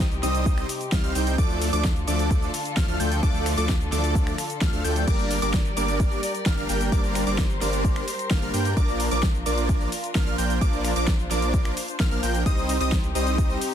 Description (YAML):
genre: EDM, festival progressive house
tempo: 130 BPM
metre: 4/4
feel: straight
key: G minor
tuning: A4 = 440 Hz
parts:
  - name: dark studio string section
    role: sustained chords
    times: 0.0-13.7 s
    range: C3 to D5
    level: -32 LUFS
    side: left 2 dB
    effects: sidechain pumping
  - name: plucky unison lead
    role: arpeggios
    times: 0.0-13.6 s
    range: D6 to G6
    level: -32 LUFS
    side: equal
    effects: phaser, sidechain pumping, tape echo
  - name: supersaw chords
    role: riff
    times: 0.0-13.6 s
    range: F3 to G5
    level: -28 LUFS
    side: right 1 dB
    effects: sidechain pumping, tape echo
  - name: saturated sub bass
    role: bass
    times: 0.0-13.6 s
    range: G1 to G2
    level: -28 LUFS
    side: equal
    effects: sidechain pumping
  - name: big-room dance drum kit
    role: drums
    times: 0.0-13.7 s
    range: crash cymbal, finger snaps, hi-hat, shaker, snare drum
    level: -31 LUFS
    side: equal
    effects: overdrive, studio ambience
  - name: electronic kick drum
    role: drums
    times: 0.0-13.5 s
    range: none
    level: -23 LUFS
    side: equal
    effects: overdrive, studio ambience
room: digital ambience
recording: dense, heavily limited modern master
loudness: -21 LUFS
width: side -9 dB against mid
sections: 0.0-13.7 A section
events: none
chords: 0.0 Cm; 1.4 Dm; 5.1 Gm; 8.8 Bb; 12.5 Cm